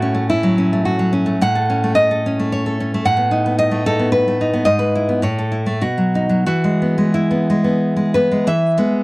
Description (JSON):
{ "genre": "romantic piece for solo classical guitar", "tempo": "84-116 BPM", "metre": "3/4", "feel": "rubato", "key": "E major", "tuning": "A4 = 441 Hz", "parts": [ { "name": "nylon-string guitar", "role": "solo", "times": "0.0-9.0 s", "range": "G#2 to F#5", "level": "-14 LUFS", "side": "equal", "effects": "none" } ], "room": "light reverb", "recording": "dry, close 1970s-style studio recording, vinyl crackle", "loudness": "-14 LUFS", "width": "side -23 dB against mid", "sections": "0.0-8.5 A section", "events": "none", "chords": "0.0 F#m/A; 3.0 B7/A; 4.6 E/G#; 5.2 A; 5.8 B; 6.5 E" }